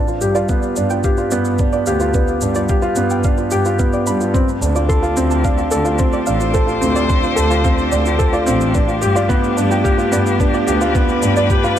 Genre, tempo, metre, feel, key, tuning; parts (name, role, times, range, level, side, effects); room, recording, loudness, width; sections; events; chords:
piano and strings electronica; 109 BPM; 4/4; straight; A4 = 439 Hz
dark upright piano; riff; 0.0-11.8 s; B3 to A4; -17 LUFS; right 1 dB; digital delay
shaker; drums; 0.1-11.7 s; -30 LUFS; right 1 dB
clear chamber double bass section; bass; 0.2-11.4 s; A1 to G2; -21 LUFS; equal; sidechain pumping
soft round pluck; arpeggios; 0.3-11.6 s; B4 to C6; -25 LUFS; right 3 dB; chorus, sidechain pumping, digital delay
electronic kick drum; drums; 0.5-11.6 s; -18 LUFS; equal
rich string quartet; sustained chords; 4.3-11.8 s; A3 to C5; -22 LUFS; left 4 dB
light reverb, studio ambience; -14 LUFS; side -10 dB against mid
0.0-11.8 A section
0.0 G7; 4.3 Dm7; 8.7 G7